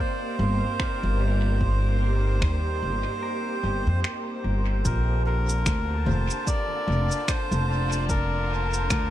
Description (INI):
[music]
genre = ambient dub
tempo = 74 BPM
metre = 4/4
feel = swing 58% on 16ths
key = unclear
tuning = A4 = 440 Hz
[part]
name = melodica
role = melody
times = 0.0-9.1 s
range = Bb4 to D5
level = -30 LUFS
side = right 1 dB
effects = tape echo
[part]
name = dark symphonic string section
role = sustained chords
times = 0.0-9.1 s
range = D3 to A5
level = -34 LUFS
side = equal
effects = none
[part]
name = pedal steel guitar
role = arpeggios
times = 0.0-4.6 s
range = G3 to F5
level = -40 LUFS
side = left 3 dB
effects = tape echo
[part]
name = bubbling stepped-filter texture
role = texture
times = 0.0-9.1 s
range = C5 to A5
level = -38 LUFS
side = equal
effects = chorus, built-in reverb
[part]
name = upright bass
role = bass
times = 0.4-9.1 s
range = F1 to F2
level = -24 LUFS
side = equal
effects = none
[part]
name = electronic finger snaps, shaker and congas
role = drums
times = 0.8-9.1 s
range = none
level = -32 LUFS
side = left 1 dB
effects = dub echo
[part]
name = electronic kick drum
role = drums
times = 0.8-9.1 s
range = none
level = -28 LUFS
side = equal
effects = overdrive
[sound]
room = studio reverb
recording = echo-heavy mix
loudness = -22 LUFS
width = side -13 dB against mid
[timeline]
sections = 0.0-4.9 A section; 4.9-9.1 B section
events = break 3.2-4.9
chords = 0.0 Cm7; 4.9 Bbmaj9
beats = 0.80 | 1.61 2.42 3.23 4.04 | 4.85 5.66 6.47 7.28 | 8.09 8.90